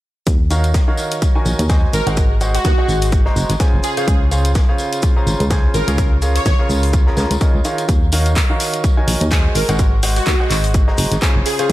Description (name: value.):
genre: piano house.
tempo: 126 BPM.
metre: 4/4.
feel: swing 57% on 16ths.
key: Eb dorian.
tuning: A4 = 440 Hz.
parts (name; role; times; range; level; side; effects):
solid FM bass; bass; 0.3-11.7 s; Gb1 to Eb2; -17 LUFS; equal; sidechain pumping.
electronic kick drum; drums; 0.3-11.7 s; none; -15 LUFS; equal; overdrive.
punchy analog drum machine; drums; 0.3-11.7 s; handclaps, hi-hat; -23 LUFS; left 1 dB; none.
vintage drum kit; drums; 0.3-11.7 s; hi-hat, shaker, snare drum; -32 LUFS; right 1 dB; sidechain pumping on hats, high-pass filter on hats, high-pass filter on snare, sidechain pumping on perc, high-pass filter on perc, high-pass filter on room, dub echo.
tambourine; percussion; 0.3-11.7 s; none; -32 LUFS; left 3 dB; dub echo.
clear grand piano; riff; 0.5-11.7 s; Db3 to Bb5; -22 LUFS; right 1 dB; sidechain pumping, dub echo.
airy dreamy lead; melody; 1.9-6.5, 9.6-11.7 s; Gb4 to Db5; -23 LUFS; right 1 dB; chorus, dub echo.
room: small room ambience.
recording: echo-heavy mix.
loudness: -13 LUFS.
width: side -16 dB against mid.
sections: 0.3-11.7 A section.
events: none.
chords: 0.3 Ebm9; 1.9 Ab7; 3.8 Dbmaj7; 6.0 Bbm7; 7.9 Ebm9; 9.6 Ab7.